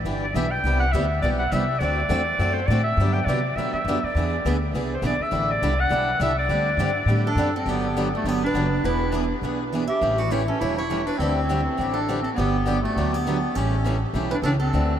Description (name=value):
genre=acoustic string swing (jazz manouche)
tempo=204 BPM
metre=4/4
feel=swing 58% on 8ths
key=G major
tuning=A4 = 440 Hz
part: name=upright bass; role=bass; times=0.0-15.0 s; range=E1 to C3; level=-25 LUFS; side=equal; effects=none
part: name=picked steel-string acoustic guitar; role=accompaniment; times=0.1-14.9 s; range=C3 to B4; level=-30 LUFS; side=right 6 dB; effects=none
part: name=picked swing-style acoustic guitar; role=accompaniment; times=0.1-14.9 s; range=C3 to A4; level=-29 LUFS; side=left 4 dB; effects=none
part: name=clear clarinet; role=melody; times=0.2-15.0 s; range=A3 to G5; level=-25 LUFS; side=equal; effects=none
part: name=picked swing-style acoustic guitar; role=second line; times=7.3-15.0 s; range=F#4 to E5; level=-29 LUFS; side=right 2 dB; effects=none
room=wet huge ambient reverb, RT60 8.6 s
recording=in a vast, echoing space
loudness=-20 LUFS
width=side -9 dB against mid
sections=0.0-7.7 A section; 7.7-15.0 B section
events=none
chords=0.0 Em7; 0.6 Cmaj9; 1.8 D7; 3.0 Gmaj7; 4.2 E7; 5.3 A7sus4; 6.5 D7sus4; 7.7 Gmaj7; 8.8 E7; 10.0 A7; 11.2 D7sus4; 12.4 Gmaj7; 13.6 A7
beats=0.05 0.34 | 0.64 0.93 1.23 1.52 | 1.81 2.11 2.40 2.69 | 2.98 3.28 3.57 3.86 | 4.16 4.45 4.74 5.03 | 5.33 5.62 5.91 6.20 | 6.50 6.79 7.08 7.37 | 7.67 7.96 8.25 8.55 | 8.84 9.14 9.43 9.72 | 10.02 10.31 10.61 10.90 | 11.20 11.49 11.79 12.08 | 12.37 12.67 12.96 13.26 | 13.55 13.85 14.14 14.44 | 14.73